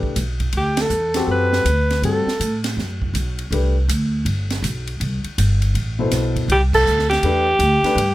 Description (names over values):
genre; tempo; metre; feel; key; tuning
modal jazz; 161 BPM; 4/4; swing 64% on 8ths; unclear; A4 = 440 Hz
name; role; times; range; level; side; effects
warm concert grand piano; accompaniment; 0.0-3.7, 6.0-8.0 s; B2 to C5; -23 LUFS; left 3 dB; none
upright bass; bass; 0.0-8.1 s; G1 to A2; -20 LUFS; equal; none
open jazz drum kit; drums; 0.0-8.1 s; crash cymbal, hi-hat, kick drum, ride cymbal, snare drum; -27 LUFS; right 2 dB; none
breathy alto saxophone; melody; 0.6-2.6, 6.5-8.1 s; G4 to B4; -18 LUFS; equal; none
room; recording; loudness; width
little or no reverb; close, detailed microphones; -17 LUFS; side -16 dB against mid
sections
0.0-8.1 A section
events
band accent 0.7, 6.7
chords
0.0 Gmaj9; 3.5 Cmaj9